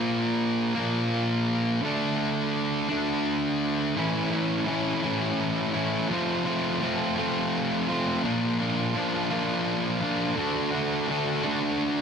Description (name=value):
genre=rock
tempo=56 BPM (dotted quarters)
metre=6/8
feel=straight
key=unclear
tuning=A4 = 437 Hz
part: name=fuzz guitar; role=solo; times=0.0-12.0 s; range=A2 to F#4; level=-24 LUFS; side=equal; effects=distortion
room=wet studio ambience, RT60 0.5 s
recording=dense, heavily limited modern master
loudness=-24 LUFS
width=side -6 dB against mid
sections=0.0-4.0 A section; 4.0-12.0 B section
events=none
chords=0.0 Bb5; 1.8 D5; 4.0 A; 6.1 F; 8.2 Bb; 10.4 D